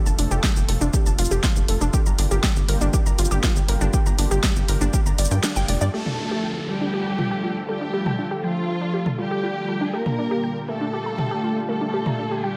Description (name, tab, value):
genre	melodic techno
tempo	120 BPM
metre	4/4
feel	straight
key	G minor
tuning	A4 = 440 Hz
part	lush unison pad	sustained chords	0.0-12.6 s	Bb2 to A4	-34 LUFS	equal	chorus, sidechain pumping
part	unison pluck	arpeggios	0.1-12.5 s	D4 to Bb5	-31 LUFS	equal	sidechain pumping, dub echo
part	tight sequencer bass	bass	0.1-5.9 s	F1 to G2	-24 LUFS	equal	sidechain pumping
part	deep house drum kit	drums	0.1-12.2 s	hi-hat, shaker, snare drum, toms	-28 LUFS	equal	studio reverb
part	electronic kick drum	drums	0.4-5.0 s	none	-24 LUFS	equal	studio reverb
part	unison lead	melody	5.9-12.6 s	F3 to Bb3	-29 LUFS	equal	ensemble chorus, sidechain pumping, tape echo
part	dark symphonic violin section	second line	5.9-12.6 s	F4 to Bb4	-33 LUFS	equal	sidechain pumping, dub echo
part	downlifter	sound effects	5.9-9.9 s	none	-38 LUFS	equal	none
room	light reverb, digital ambience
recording	none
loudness	-22 LUFS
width	mono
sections	0.0-5.9 A section; 5.9-12.6 B section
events	kick drops out 5.4-5.9; band accent 5.4; filter sweep on synth arpeggio sound 5.9-12.6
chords	0.0 F; 1.9 Gm7; 5.9 Dm; 9.9 Gm7